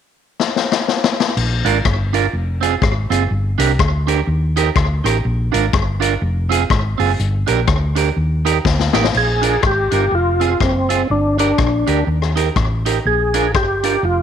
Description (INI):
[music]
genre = ska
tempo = 123 BPM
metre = 4/4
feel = swing 59% on 8ths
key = Bb mixolydian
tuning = A4 = 440 Hz
[part]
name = vintage drum kit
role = drums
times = 0.4-13.9 s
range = crash cymbal, hi-hat, kick drum, rim click, snare drum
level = -19 LUFS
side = left 4 dB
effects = slapback echo
[part]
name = hollow-body short-scale fingered electric bass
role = bass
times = 1.4-14.2 s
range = F1 to Eb2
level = -18 LUFS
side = equal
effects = tube saturation
[part]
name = electric guitar at the edge of break-up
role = accompaniment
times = 1.6-14.1 s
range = C4 to Bb4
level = -20 LUFS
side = right 13 dB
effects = slapback echo
[part]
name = percussive tonewheel organ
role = melody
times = 9.2-14.2 s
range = C4 to Ab4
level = -17 LUFS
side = equal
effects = overdrive, chorus vibrato, slow rotary speaker
[sound]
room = light reverb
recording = 1960s-style stereo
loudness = -14 LUFS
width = side -8 dB against mid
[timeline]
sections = 0.0-1.4 A section; 1.4-9.1 B section; 9.1-14.2 C section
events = drum fill 0.4-1.4, 8.7-9.1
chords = 0.0 N.C.; 1.4 Bb; 2.3 Fm; 3.3 Gm; 4.3 Eb; 5.2 Bb; 6.2 Fm; 7.2 Gm; 8.2 Eb; 9.1 Bb; 10.1 Fm; 11.1 Gm; 12.1 Eb; 13.1 Bb